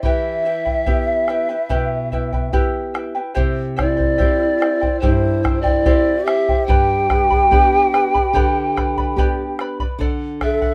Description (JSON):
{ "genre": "andean folk, Andean ensemble", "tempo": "72 BPM", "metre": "4/4", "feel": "straight", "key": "E minor", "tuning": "A4 = 440 Hz", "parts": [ { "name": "mellow hollow polished pan flute", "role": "melody", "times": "0.0-10.7 s", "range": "C5 to G5", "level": "-21 LUFS", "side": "equal", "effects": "none" }, { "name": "breathy mellow large quena", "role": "second line", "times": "0.0-10.7 s", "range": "E4 to E5", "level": "-24 LUFS", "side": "equal", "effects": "none" }, { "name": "charango", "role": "accompaniment", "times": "0.0-10.7 s", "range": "E4 to B5", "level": "-28 LUFS", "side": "equal", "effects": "none" }, { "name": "nylon-string guitar", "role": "accompaniment", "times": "0.0-10.7 s", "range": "G2 to G4", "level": "-27 LUFS", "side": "equal", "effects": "none" }, { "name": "bombo", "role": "percussion", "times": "0.0-10.7 s", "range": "none", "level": "-23 LUFS", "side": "equal", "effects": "none" } ], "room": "wet small room ambience, RT60 0.5 s", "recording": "none", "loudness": "-18 LUFS", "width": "mono", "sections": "0.0-3.4 A section; 3.4-10.7 B section", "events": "none", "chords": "0.0 Em; 3.4 C; 6.7 G; 10.0 D" }